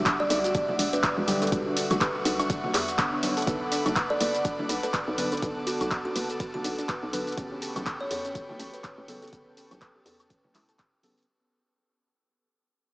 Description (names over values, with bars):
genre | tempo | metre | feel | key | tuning
deep house | 123 BPM | 4/4 | swing 58% on 16ths | unclear | A4 = 441 Hz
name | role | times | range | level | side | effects
airy breathy pad | sustained chords | 0.0-11.3 s | G3 to D6 | -35 LUFS | equal | chorus, sidechain pumping
percussive organ stab | stabs | 0.0-11.3 s | C#3 to C#5 | -34 LUFS | equal | chorus, sidechain pumping, tape echo
hollow knocking FM bass | bass | 0.0-11.0 s | E1 to E2 | -33 LUFS | equal | none
soft round pluck | arpeggios | 0.1-11.1 s | C#4 to B4 | -36 LUFS | equal | chorus, sidechain pumping, tape echo
electronic kick drum | drums | 0.1-10.9 s | none | -33 LUFS | equal | none
punchy analog drum machine | drums | 0.1-11.3 s | handclaps, hi-hat, ride cymbal, shaker, woodblock | -30 LUFS | equal | none
kalimba | melody | 0.2-10.2 s | F#4 to D5 | -32 LUFS | right 1 dB | tape echo
bongos and congas | percussion | 0.2-11.1 s | none | -37 LUFS | equal | none
room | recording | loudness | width
wet huge ambient reverb, RT60 8.2 s | dreamy mix soaked in reverb, small speaker sound | -25 LUFS | side -23 dB against mid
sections
0.0-11.3 A section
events
drop 0.0-11.3; fade-out 3.5-11.3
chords
0.0 Em9; 3.2 Bm7; 7.4 A9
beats
0.06 0.55 1.03 | 1.52 2.01 2.50 2.98 | 3.47 3.96 4.45 4.94 | 5.42 5.91 6.40 6.89 | 7.38 7.86 8.35 8.84 | 9.33 9.81 10.30 10.79